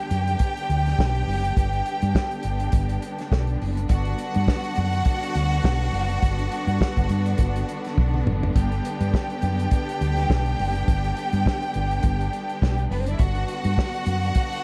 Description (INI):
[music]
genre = disco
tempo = 103 BPM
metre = 4/4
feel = swing 56% on 16ths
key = G major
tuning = A4 = 441 Hz
[part]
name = clear studio violin section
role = second line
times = 0.0-14.6 s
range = B3 to G5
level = -31 LUFS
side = equal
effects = none
[part]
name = rich studio string section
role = sustained chords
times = 0.0-14.6 s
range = D3 to D4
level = -34 LUFS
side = equal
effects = none
[part]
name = hollow-body short-scale fingered electric bass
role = bass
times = 0.1-14.3 s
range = F#1 to G2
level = -26 LUFS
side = equal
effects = none
[part]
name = warm soul drum kit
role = drums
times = 0.1-14.6 s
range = hi-hat, kick drum, snare drum, toms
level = -26 LUFS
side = equal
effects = none
[sound]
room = small room ambience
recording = dark, warm production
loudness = -23 LUFS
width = mono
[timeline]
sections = 0.0-14.6 A section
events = drum fill 8.0-8.6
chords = 0.0 Gmaj7